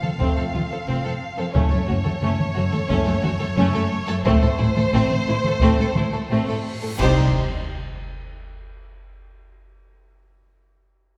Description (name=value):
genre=cinematic, epic orchestral film score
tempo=88 BPM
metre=4/4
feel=straight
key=unclear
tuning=A4 = 440 Hz
part: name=warm symphonic violin section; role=melody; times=0.0-7.4 s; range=C5 to F5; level=-30 LUFS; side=equal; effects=none
part: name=warm symphonic violin section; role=second line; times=0.0-7.4 s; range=C4 to A4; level=-31 LUFS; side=equal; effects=none
part: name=warm symphonic viola section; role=accompaniment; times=0.0-7.4 s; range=A3 to Eb4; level=-30 LUFS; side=equal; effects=none
part: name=warm symphonic cello section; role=bass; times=0.0-7.4 s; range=F2 to C3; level=-28 LUFS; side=equal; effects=none
part: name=taiko ensemble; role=drums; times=0.0-6.3 s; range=none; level=-26 LUFS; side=equal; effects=none
part: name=mellow French horn section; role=sustained chords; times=0.2-7.3 s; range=G3 to Eb4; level=-33 LUFS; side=equal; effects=none
part: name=warm studio double bass section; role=bass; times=0.2-7.4 s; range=F1 to C2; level=-28 LUFS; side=equal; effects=none
part: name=cymbal swell, clash cymbals and concert bass drum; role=percussion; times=4.2-8.3 s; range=none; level=-33 LUFS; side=equal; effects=none
part: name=reverse cymbal and impact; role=sound effects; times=6.4-9.7 s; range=none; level=-38 LUFS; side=equal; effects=none
room=wet scoring stage reverb, RT60 1.7 s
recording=recorded in a church or concert hall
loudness=-21 LUFS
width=mono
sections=0.0-7.0 A section; 7.0-9.7 B section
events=reverse cymbal 6.4-7.0; band accent 7.0-7.7; impact 7.0-9.7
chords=0.0 F; 1.6 F#m; 4.3 Am; 7.0 Cm